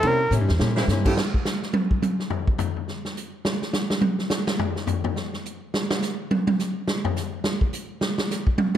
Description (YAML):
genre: jazz, big band swing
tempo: 210 BPM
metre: 4/4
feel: swing 59% on 8ths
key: unclear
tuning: A4 = 435 Hz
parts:
  - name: archtop guitar, miked and amplified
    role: accompaniment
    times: 0.0-1.1 s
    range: C3 to E4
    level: -30 LUFS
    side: left 6 dB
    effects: none
  - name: warm baby grand piano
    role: accompaniment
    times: 0.0-1.2 s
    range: G3 to Bb4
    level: -28 LUFS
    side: right 2 dB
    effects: none
  - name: upright bass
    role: bass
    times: 0.0-1.2 s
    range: E2 to C3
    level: -23 LUFS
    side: equal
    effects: none
  - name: swinging big-band drum kit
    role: drums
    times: 0.0-8.8 s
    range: crash cymbal, hi-hat, kick drum, ride cymbal, snare drum, toms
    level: -23 LUFS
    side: equal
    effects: none
  - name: clear saxophone section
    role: sustained chords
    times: 0.8-1.1 s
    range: Db3 to G4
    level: -31 LUFS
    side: right 1 dB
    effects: none
room: light reverb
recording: none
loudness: -22 LUFS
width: side -10 dB against mid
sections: 0.0-1.2 A section; 1.2-8.8 A section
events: drum fill 0.3-0.9; drum solo 1.2-8.8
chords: 0.0 C7b9; 1.2 N.C.